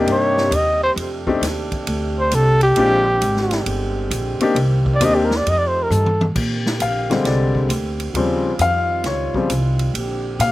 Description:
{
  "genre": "jazz, big band swing",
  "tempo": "134 BPM",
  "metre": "4/4",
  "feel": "swing 66% on 8ths",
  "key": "Bb major",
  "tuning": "A4 = 440 Hz",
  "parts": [
    { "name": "clear baby grand piano", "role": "accompaniment", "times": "0.0-10.5 s", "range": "C3 to F5", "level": "-19 LUFS", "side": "left 3 dB", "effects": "none" },
    { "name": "clear trombone section", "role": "sustained chords", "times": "0.0-10.5 s", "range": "C3 to G4", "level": "-27 LUFS", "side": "right 2 dB", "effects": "none" },
    { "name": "upright bass", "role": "bass", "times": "0.0-10.5 s", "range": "G1 to Bb2", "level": "-21 LUFS", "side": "equal", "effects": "none" },
    { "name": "breathy trumpet", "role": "melody", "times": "0.1-6.3 s", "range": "G4 to Eb5", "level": "-17 LUFS", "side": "equal", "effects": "none" },
    { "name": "swinging big-band drum kit", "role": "drums", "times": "0.1-10.5 s", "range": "crash cymbal, hi-hat, kick drum, ride cymbal, snare drum, toms", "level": "-27 LUFS", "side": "right 1 dB", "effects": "none" }
  ],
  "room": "little or no reverb",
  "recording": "recorded outdoors, with no room sound",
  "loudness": "-16 LUFS",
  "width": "side -16 dB against mid",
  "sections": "0.0-6.4 A section; 6.4-10.5 A section",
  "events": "trumpet solo 0.0-6.4; drum fill 5.9-6.4; grand piano solo 6.4-10.5",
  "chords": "0.0 Cm7; 1.0 F13; 2.8 Bb13; 4.6 Cm7; 5.5 F9; 6.4 Bb13; 8.2 Eb13; 9.9 Bb69"
}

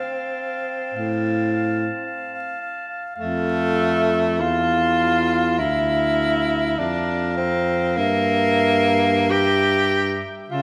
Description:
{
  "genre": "classical, lyrical piece for single-reed quartet",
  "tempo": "44-54 BPM",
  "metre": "4/4",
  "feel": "rubato",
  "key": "unclear",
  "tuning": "A4 = 440 Hz",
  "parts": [
    { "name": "clear clarinet", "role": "melody", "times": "0.0-10.6 s", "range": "A5 to Bb5", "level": "-31 LUFS", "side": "equal", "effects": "none" },
    { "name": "clear alto saxophone", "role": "second line", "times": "0.0-10.6 s", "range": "E5 to F5", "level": "-31 LUFS", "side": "equal", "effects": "none" },
    { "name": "warm tenor saxophone", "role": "accompaniment", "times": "0.0-10.6 s", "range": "A3 to G4", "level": "-23 LUFS", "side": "equal", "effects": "none" },
    { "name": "warm baritone saxophone", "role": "bass", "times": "0.9-10.6 s", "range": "D2 to C#3", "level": "-26 LUFS", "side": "equal", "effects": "none" }
  ],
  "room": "wet scoring stage reverb, RT60 2.2 s",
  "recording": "vinyl crackle",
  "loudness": "-21 LUFS",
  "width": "mono",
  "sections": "0.0-10.6 A section",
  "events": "none",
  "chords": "0.0 Dm (rootless); 3.2 F; 5.6 Bb/D; 8.0 Edim/G"
}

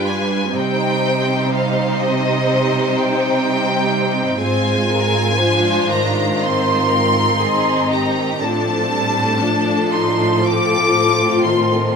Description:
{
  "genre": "classical, slow romantic movement for string orchestra",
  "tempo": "58-64 BPM",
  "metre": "4/4",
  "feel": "rubato",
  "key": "C minor",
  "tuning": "A4 = 440 Hz",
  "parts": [
    { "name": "rich studio violin section", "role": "melody", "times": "0.0-11.9 s", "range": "Eb5 to D6", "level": "-20 LUFS", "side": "left 1 dB", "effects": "none" },
    { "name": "rich studio violin section", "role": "second line", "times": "0.0-12.0 s", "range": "C4 to C5", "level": "-20 LUFS", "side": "left 1 dB", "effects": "none" },
    { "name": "warm studio viola section", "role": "accompaniment", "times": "0.0-12.0 s", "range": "Eb3 to F4", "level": "-20 LUFS", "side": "equal", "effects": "none" },
    { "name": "rich studio cello section", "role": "bass", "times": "0.0-12.0 s", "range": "G2 to C3", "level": "-23 LUFS", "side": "right 2 dB", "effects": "none" }
  ],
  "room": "moderate large studio reverb, RT60 1.3 s",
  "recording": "minimal, uncompressed stereo recording",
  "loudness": "-14 LUFS",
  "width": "side -6 dB against mid",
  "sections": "0.0-12.0 A section",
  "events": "none",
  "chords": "0.0 G7; 0.6 Cm; 4.4 Ab; 8.4 F7/A"
}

